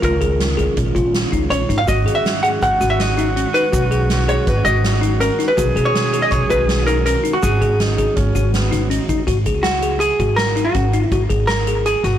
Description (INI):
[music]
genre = progressive instrumental, band music in an uneven meter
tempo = 162 BPM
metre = 5/4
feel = straight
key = G# minor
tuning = A4 = 441 Hz
[part]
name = vintage hollow-body jazz guitar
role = melody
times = 0.0-12.2 s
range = F#4 to F#5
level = -19 LUFS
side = right 1 dB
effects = tape echo
[part]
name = mellow tonewheel organ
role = accompaniment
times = 0.0-9.2 s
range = D#3 to F#4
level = -26 LUFS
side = right 4 dB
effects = chorus vibrato, fast rotary speaker
[part]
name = bell-like tine electric piano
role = arpeggios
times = 0.0-12.2 s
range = C#4 to G#4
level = -23 LUFS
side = left 5 dB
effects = tape echo
[part]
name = upright bass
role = bass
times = 0.0-12.2 s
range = G#1 to B2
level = -20 LUFS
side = equal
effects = none
[part]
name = soft-mallet drum kit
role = drums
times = 0.0-12.1 s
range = hi-hat, kick drum, snare drum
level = -22 LUFS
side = right 1 dB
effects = none
[part]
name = mellow alto saxophone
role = second line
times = 1.9-9.3 s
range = B3 to G#4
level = -26 LUFS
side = right 3 dB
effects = none
[part]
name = egg shaker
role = percussion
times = 1.9-9.2 s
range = none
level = -36 LUFS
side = right 6 dB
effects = none
[sound]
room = light reverb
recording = blown-out, overdriven recording, overdrive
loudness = -15 LUFS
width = side -10 dB against mid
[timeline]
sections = 0.0-9.3 A section; 9.3-12.2 B section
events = hollow-body jazz guitar solo 9.3-12.2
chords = 0.0 A#m7; 1.9 G#m7; 5.6 B; 7.4 G#7(no3); 11.1 N.C.